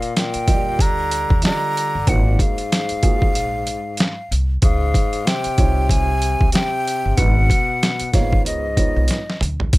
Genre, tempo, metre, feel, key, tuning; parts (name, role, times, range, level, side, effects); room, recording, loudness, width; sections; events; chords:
hip hop, jazz-hop; 94 BPM; 4/4; swing 60% on 16ths; A4 = 440 Hz
breathy mellow silver concert flute; melody; 0.0-9.4 s; Eb5 to Bb5; -23 LUFS; right 1 dB
breathy tenor saxophone; second line; 0.0-9.4 s; Ab2 to D3; -26 LUFS; left 5 dB
boom bap sampler-style drum kit; drums; 0.0-9.8 s; hi-hat, kick drum, snare drum, toms; -18 LUFS; equal; overdrive
upright bass; bass; 0.4-9.8 s; G1 to Eb2; -21 LUFS; equal
dark concert grand piano; accompaniment; 0.5-9.2 s; C3 to Eb5; -27 LUFS; right 5 dB
little or no reverb; -16 LUFS; side -20 dB against mid
0.0-9.7 A section
drum fill 9.1-9.7
0.0 Ebmaj9; 2.1 Ab13; 4.6 Dbmaj9; 7.2 Abm7; 8.5 Db9